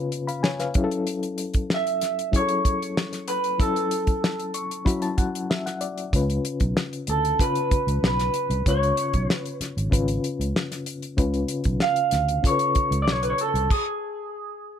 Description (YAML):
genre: lush 1970s-style soul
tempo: 95 BPM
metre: 4/4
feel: straight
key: unclear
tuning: A4 = 440 Hz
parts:
  - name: reed electric piano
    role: accompaniment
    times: 0.0-13.7 s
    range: C#3 to C#6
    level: -28 LUFS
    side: left 3 dB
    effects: fast tremolo
  - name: damped 70s drum kit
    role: drums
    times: 0.1-13.9 s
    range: crash cymbal, hi-hat, kick drum, snare drum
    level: -25 LUFS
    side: equal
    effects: none
  - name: electric guitar through a small old amp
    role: melody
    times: 1.7-14.8 s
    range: G#4 to E#5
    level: -24 LUFS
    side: right 2 dB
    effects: spring reverb
  - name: vintage muted fingered electric bass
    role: bass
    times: 6.1-13.7 s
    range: G#1 to D2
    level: -26 LUFS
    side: right 1 dB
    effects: none
room: light reverb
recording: none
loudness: -22 LUFS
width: side -9 dB against mid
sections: 0.0-14.8 A section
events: reed electric piano fill 4.2-6.1; stop 13.7-14.8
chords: 0.0 C#7; 0.8 F#m7; 6.1 C#7